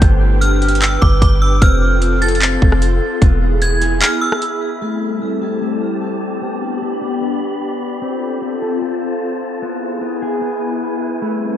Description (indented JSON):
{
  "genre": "hip hop, atmospheric cloud-rap",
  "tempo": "150 BPM",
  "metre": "4/4",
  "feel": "half-time",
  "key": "A minor",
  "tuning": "A4 = 439 Hz",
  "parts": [
    { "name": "airy breathy pad", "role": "sustained chords", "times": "0.0-11.6 s", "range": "G3 to B4", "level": "-21 LUFS", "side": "left 2 dB", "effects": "chorus, sidechain pumping, low-pass filter" },
    { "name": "mellow electric guitar", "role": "arpeggios", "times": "0.0-11.6 s", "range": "A3 to A4", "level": "-25 LUFS", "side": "left 2 dB", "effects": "warbly pitch drift, low-pass filter, tape echo" },
    { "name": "soft 808-style bass", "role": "bass", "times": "0.0-4.0 s", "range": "E1 to G1", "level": "-15 LUFS", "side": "equal", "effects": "none" },
    { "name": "trap drum kit", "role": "drums", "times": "0.0-4.5 s", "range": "handclaps, hi-hat, kick drum, rim click", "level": "-14 LUFS", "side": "equal", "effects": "vintage 12-bit sampler grit" },
    { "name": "wind-like tuned noise texture", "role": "texture", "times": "0.0-11.6 s", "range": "E4 to D6", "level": "-27 LUFS", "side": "right 1 dB", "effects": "built-in reverb" },
    { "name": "metallic FM bell", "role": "melody", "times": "0.4-4.4 s", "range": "D6 to A6", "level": "-21 LUFS", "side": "right 1 dB", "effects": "chorus, tape echo" }
  ],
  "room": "light reverb, digital ambience",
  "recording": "none",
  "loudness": "-14 LUFS",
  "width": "side -11 dB against mid",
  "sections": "0.0-4.8 A section; 4.8-11.6 B section",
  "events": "break 4.0-4.8; filter sweep 4.8-11.6",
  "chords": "0.0 G; 1.6 F; 3.2 E; 4.8 Am7; 6.4 G; 8.0 F; 9.6 E",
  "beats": "| 0.02 0.42 0.82 1.22 | 1.62 2.02 2.42 2.82 | 3.22 3.62 4.02 4.42 | 4.82 5.22 5.62 6.02 | 6.42 6.82 7.22 7.62 | 8.02 8.42 8.82 9.22 | 9.62 10.02 10.42 10.82 | 11.22"
}